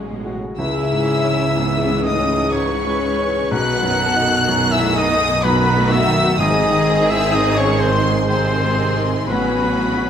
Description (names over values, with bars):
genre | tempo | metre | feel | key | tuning
cinematic | 62 BPM | 3/4 | rubato | C# minor | A4 = 440 Hz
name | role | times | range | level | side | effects
rich symphonic violin section | second line | 0.0-10.1 s | C#4 to B4 | -27 LUFS | left 1 dB | none
clear concert grand piano | accompaniment | 0.0-10.1 s | B1 to F#4 | -24 LUFS | equal | none
warm symphonic viola section | accompaniment | 0.0-10.1 s | D#3 to C#4 | -25 LUFS | right 1 dB | none
concert harp | arpeggios | 0.0-10.1 s | G#2 to B#5 | -27 LUFS | left 6 dB | none
clear studio double bass section | bass | 0.0-10.1 s | G#1 to C#2 | -25 LUFS | right 4 dB | none
warm studio cello section | bass | 0.0-10.1 s | G#2 to C#3 | -26 LUFS | right 4 dB | none
rich studio violin section | melody | 0.6-10.1 s | B5 to F#6 | -23 LUFS | left 3 dB | none
clear oboe | second line | 0.6-10.1 s | B4 to F#5 | -24 LUFS | right 1 dB | none
silver concert flute | second line | 0.6-10.1 s | B4 to F#5 | -25 LUFS | left 2 dB | none
warm French horn section | sustained chords | 0.6-10.1 s | B#2 to F#4 | -24 LUFS | left 3 dB | none
timpani | percussion | 0.6-7.8 s | G#2 to C#3 | -28 LUFS | equal | none
room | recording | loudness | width
wet scoring stage reverb, RT60 1.7 s | none | -15 LUFS | side -8 dB against mid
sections
0.0-10.1 A section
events
none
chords
0.0 F#madd9/A; 0.6 C#m7; 3.5 B7; 6.4 G#; 9.3 F#madd9/A